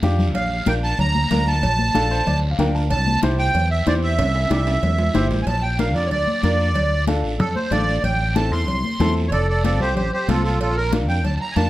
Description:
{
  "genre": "latin, cumbia",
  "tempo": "187 BPM",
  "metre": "4/4",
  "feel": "straight",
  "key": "unclear",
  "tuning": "A4 = 440 Hz",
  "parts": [
    { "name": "warm upright piano", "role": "accompaniment", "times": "0.0-11.7 s", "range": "C4 to A5", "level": "-26 LUFS", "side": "left 1 dB", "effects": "none" },
    { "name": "fingered electric bass", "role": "bass", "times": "0.0-11.7 s", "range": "F1 to F2", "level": "-21 LUFS", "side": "equal", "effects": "none" },
    { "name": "congas", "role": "percussion", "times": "0.0-11.7 s", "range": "none", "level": "-26 LUFS", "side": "left 3 dB", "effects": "none" },
    { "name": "guiro", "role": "percussion", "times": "0.0-11.7 s", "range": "none", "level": "-36 LUFS", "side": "right 2 dB", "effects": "none" },
    { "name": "accordion", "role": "melody", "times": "0.3-11.7 s", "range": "F4 to C6", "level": "-22 LUFS", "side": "right 2 dB", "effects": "light tremolo tuning" },
    { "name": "cowbell and timbales", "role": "percussion", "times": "0.3-11.7 s", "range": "none", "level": "-32 LUFS", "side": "right 4 dB", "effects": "none" }
  ],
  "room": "moderate large studio reverb, RT60 1.3 s",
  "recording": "none",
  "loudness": "-17 LUFS",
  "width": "side -15 dB against mid",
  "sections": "0.0-5.5 A section; 5.5-11.7 B section",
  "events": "drum fill 0.0-0.3, 4.2-5.5; upright piano fill 1.9-2.9; accordion solo 5.5-11.7",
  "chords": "0.3 Bb; 2.9 C; 5.5 Bb; 6.8 Dm; 8.0 Am; 9.3 F; 10.6 Bb",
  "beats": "0.03 | 0.35 0.67 0.99 1.31 | 1.63 1.95 2.27 2.59 | 2.91 3.23 3.55 3.87 | 4.19 4.51 4.83 5.15 | 5.47 5.79 6.12 6.44 | 6.76 7.08 7.40 7.72 | 8.04 8.36 8.68 9.00 | 9.32 9.64 9.96 10.29 | 10.60 10.92 11.24 11.56"
}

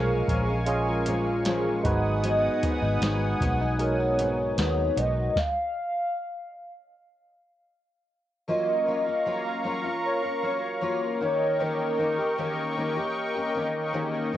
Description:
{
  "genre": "indie pop, bedroom pop",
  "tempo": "77 BPM",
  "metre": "4/4",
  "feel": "straight",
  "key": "F# major",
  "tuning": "A4 = 440 Hz",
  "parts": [
    { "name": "hollow clarinet-like synth lead", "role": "melody", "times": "0.0-13.2 s", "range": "A#4 to E#5", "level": "-28 LUFS", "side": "equal", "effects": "lush chorus, cassette tape, analog delay" },
    { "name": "barky tine electric piano", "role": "accompaniment", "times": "0.0-5.4 s", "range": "G#3 to B4", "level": "-30 LUFS", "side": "right 3 dB", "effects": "overdrive, cassette tape, plate reverb" },
    { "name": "picked steel-string acoustic guitar", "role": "accompaniment", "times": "0.0-14.4 s", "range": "G#2 to G4", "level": "-31 LUFS", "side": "left 1 dB", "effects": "analog chorus, warbly pitch drift, cassette tape, plate reverb" },
    { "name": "warm analog pad", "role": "sustained chords", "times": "0.0-14.4 s", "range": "B3 to D#6", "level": "-30 LUFS", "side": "left 1 dB", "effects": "chorus, tremolo, cassette tape, plate reverb" },
    { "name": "vintage muted fingered electric bass", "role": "bass", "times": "0.0-5.3 s", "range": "G#1 to D#2", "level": "-28 LUFS", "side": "equal", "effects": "none" },
    { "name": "soft vintage rhythm box", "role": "drums", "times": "0.3-5.5 s", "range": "hi-hat, kick drum, snare drum", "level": "-30 LUFS", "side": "equal", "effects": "none" }
  ],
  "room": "wet small room reverb, RT60 0.5 s",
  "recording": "home recording on cassette",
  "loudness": "-24 LUFS",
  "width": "side -12 dB against mid",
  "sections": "0.0-8.5 A section; 8.5-14.4 A section",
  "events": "stop 5.4-8.5",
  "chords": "0.0 A#m7; 1.8 G#m7; 5.4 N.C.; 8.5 F#maj7; 11.2 D#7",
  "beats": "0.67 1.46 | 2.24 3.02 3.80 4.58 | 5.36 6.14 6.92 7.70 | 8.48 9.26 10.04 10.81 | 11.59 12.37 13.15 13.93"
}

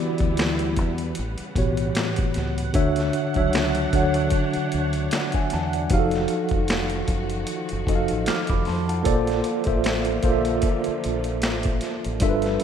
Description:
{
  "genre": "R&B, neo-soul",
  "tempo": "76 BPM",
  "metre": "4/4",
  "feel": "swing 55% on 16ths",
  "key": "unclear",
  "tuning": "A4 = 440 Hz",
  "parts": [
    { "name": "mellow tine electric piano", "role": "accompaniment", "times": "0.0-12.6 s", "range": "A2 to F6", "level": "-23 LUFS", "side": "right 1 dB", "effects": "medium stereo tremolo" },
    { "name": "warm symphonic string section", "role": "sustained chords", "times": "0.0-12.6 s", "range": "C#3 to F#5", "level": "-32 LUFS", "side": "equal", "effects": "none" },
    { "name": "deep dub fingered electric bass", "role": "bass", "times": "0.2-12.6 s", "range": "F1 to F2", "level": "-28 LUFS", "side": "equal", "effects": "none" },
    { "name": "boom bap sampler-style drum kit", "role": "drums", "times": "0.2-12.6 s", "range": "finger snaps, hi-hat, kick drum, snare drum", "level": "-26 LUFS", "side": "equal", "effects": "none" }
  ],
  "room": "moderate lush hall reverb, RT60 2.6 s",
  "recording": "rough home demo mix",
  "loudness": "-21 LUFS",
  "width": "side -8 dB against mid",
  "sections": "0.0-12.6 A section",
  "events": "none",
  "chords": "0.0 Em7; 1.2 A13; 2.7 Dmaj7; 5.9 F7b9; 9.1 A#maj7",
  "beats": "0.38 1.17 1.96 | 2.74 3.53 4.32 5.11 | 5.90 6.69 7.48 8.27 | 9.06 9.85 10.64 11.43 | 12.22"
}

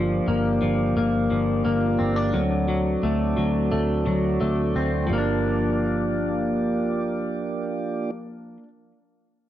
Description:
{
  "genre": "dream pop",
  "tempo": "87 BPM",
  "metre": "4/4",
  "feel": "straight",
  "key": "G minor",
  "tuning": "A4 = 441 Hz",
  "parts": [
    { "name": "mellow tonewheel organ", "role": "sustained chords", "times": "0.0-8.1 s", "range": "Bb3 to D5", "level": "-27 LUFS", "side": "right 4 dB", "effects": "slow rotary speaker" },
    { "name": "clean electric guitar", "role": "arpeggios", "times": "0.0-8.7 s", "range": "F3 to D4", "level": "-24 LUFS", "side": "left 3 dB", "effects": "lush chorus, analog delay" },
    { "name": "vintage muted picked electric bass", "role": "bass", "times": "0.0-8.1 s", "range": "G1 to D2", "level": "-27 LUFS", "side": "equal", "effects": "none" }
  ],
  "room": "light reverb, digital ambience",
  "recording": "dry, gritty hardware recording",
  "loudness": "-21 LUFS",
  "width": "side -12 dB against mid",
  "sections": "0.0-5.1 A section; 5.1-7.9 B section",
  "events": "none",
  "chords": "0.0 Gm7; 2.3 D7; 5.1 Gm7",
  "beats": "0.27 0.96 1.65 | 2.34 3.03 3.72 4.41 | 5.10 5.79 6.48 7.17"
}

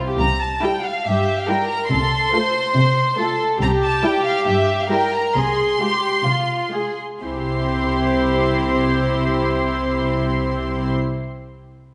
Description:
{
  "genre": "quick classical-period movement for string orchestra",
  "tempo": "117-142 BPM",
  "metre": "4/4",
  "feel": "rubato",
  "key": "C major",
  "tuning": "A4 = 439 Hz",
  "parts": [
    { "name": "warm studio violin section", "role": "second line", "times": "0.0-10.9 s", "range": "F4 to C5", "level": "-25 LUFS", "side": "equal", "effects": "none" },
    { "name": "rich studio violin section", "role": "melody", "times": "0.2-10.9 s", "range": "E5 to C6", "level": "-25 LUFS", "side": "equal", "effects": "none" },
    { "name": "dark studio cello section", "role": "bass", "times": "0.2-10.9 s", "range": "G2 to C3", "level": "-26 LUFS", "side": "equal", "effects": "none" },
    { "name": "warm studio double bass section", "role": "bass", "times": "0.2-10.9 s", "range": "C2", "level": "-29 LUFS", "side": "equal", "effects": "none" },
    { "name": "rich studio viola section", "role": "accompaniment", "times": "0.6-10.9 s", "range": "G3 to F4", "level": "-26 LUFS", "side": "equal", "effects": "none" }
  ],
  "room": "wet scoring stage reverb, RT60 1.7 s",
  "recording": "nothing above 10.8 kHz",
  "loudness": "-20 LUFS",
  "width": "mono",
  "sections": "0.2-7.2 A section; 7.2-11.1 B section",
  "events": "slowing down 2.8-7.2",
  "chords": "0.2 C7; 1.9 F/C; 3.6 C7; 5.3 Fm/C; 7.2 C",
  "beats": "| 0.19 0.62 1.05 1.48 | 1.91 2.34 2.77 3.20 | 3.62 4.04 4.47 4.91 | 5.35 5.80 6.25 6.73 | 7.23 7.71 8.19 8.68 | 9.16 9.65 10.14 10.63"
}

